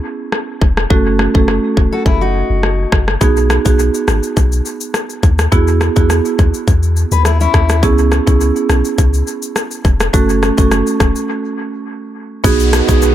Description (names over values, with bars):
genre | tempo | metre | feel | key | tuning
dancehall | 104 BPM | 4/4 | straight | unclear | A4 = 440 Hz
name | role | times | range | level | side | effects
island pop drum kit | drums | 0.3-13.1 s | hi-hat, kick drum, rim click, shaker | -15 LUFS | left 1 dB | dub echo
punchy sub bass | bass | 0.6-13.1 s | E1 to E2 | -15 LUFS | left 1 dB | none
marimba with medium mallets | accompaniment | 0.9-13.1 s | A3 to A4 | -17 LUFS | right 5 dB | dub echo
fingerpicked steel-string acoustic guitar | arpeggios | 1.9-3.0, 7.1-7.8 s | C#4 to B4 | -18 LUFS | left 6 dB | none
lush unison pad | sustained chords | 12.4-13.1 s | D#3 to F#4 | -21 LUFS | right 3 dB | chorus, phaser, sidechain pumping
tube shaker | percussion | 12.4-13.1 s | none | -31 LUFS | left 11 dB | none
downlifter | sound effects | 12.4-13.1 s | none | -22 LUFS | left 1 dB | none
room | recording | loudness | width
light reverb, digital ambience | echo-heavy mix | -11 LUFS | side -12 dB against mid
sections
0.0-12.4 A section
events
break 0.0-3.2, 11.3-12.4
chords
0.0 N.C.; 0.9 F#m; 3.2 B6; 5.5 Eadd9; 7.8 C#m7; 10.1 F#m; 12.4 B6